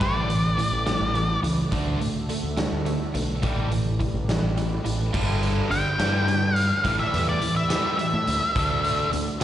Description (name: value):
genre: indie rock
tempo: 70 BPM (dotted quarters)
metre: 6/8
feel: straight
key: G major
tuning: A4 = 440 Hz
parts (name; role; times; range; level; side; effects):
- octave-fuzz lead guitar; melody; 0.0-1.4, 5.7-9.1 s; D5 to G5; -25 LUFS; left 1 dB; distortion, slapback echo, digital delay
- sweeping resonant pad; sustained chords; 0.0-9.4 s; D3 to E5; -37 LUFS; equal; chorus
- biting overdriven guitar; riff; 0.0-9.4 s; G2 to D4; -28 LUFS; equal; slapback echo
- growling fingered electric bass; bass; 0.0-9.4 s; G1 to A2; -26 LUFS; equal; overdrive
- raw garage drum kit; drums; 0.0-9.4 s; crash cymbal, hi-hat, kick drum, snare drum; -28 LUFS; equal; none
room: studio reverb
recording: live gig heard through the venue's PA, recital hall reverb, nothing above 10.6 kHz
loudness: -21 LUFS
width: side -12 dB against mid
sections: 0.0-5.1 A section; 5.1-9.4 B section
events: lead electric guitar solo 5.1-9.4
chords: 0.0 A7sus4; 1.7 Dadd9; 3.4 A7sus4; 5.1 G6; 6.8 A7sus4; 8.6 Dadd9